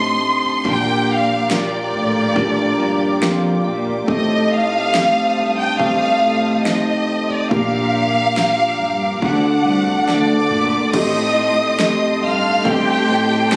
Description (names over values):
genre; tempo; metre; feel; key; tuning
pop ballad; 70 BPM; 4/4; straight; unclear; A4 = 440 Hz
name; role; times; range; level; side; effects
warm studio violin section; melody; 0.0-13.6 s; G4 to F6; -21 LUFS; equal; none
bell-like tine electric piano; accompaniment; 0.0-13.6 s; A2 to Bb5; -24 LUFS; equal; none
dark studio string section; sustained chords; 0.0-13.6 s; F4 to Eb6; -29 LUFS; equal; none
fingerpicked steel-string acoustic guitar; arpeggios; 0.0-13.6 s; Bb2 to A4; -28 LUFS; equal; none
warm chamber cello section; bass; 0.0-13.6 s; C2 to Bb2; -25 LUFS; equal; none
pop drum kit; drums; 0.4-13.6 s; crash cymbal, kick drum, snare drum, toms; -27 LUFS; equal; none
room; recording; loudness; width
moderate plate reverb, RT60 1.9 s, small room ambience; recorded on a phone in the room, studio reverb, compression; -17 LUFS; mono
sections
0.0-10.9 A section; 10.9-13.6 B section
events
tine electric piano fill 2.4-4.1; drum fill 10.1-10.9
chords
0.0 Am7b5; 0.7 Gm7; 4.1 Am7b5; 7.5 Gm7/Bb; 9.2 D; 10.9 Am7b5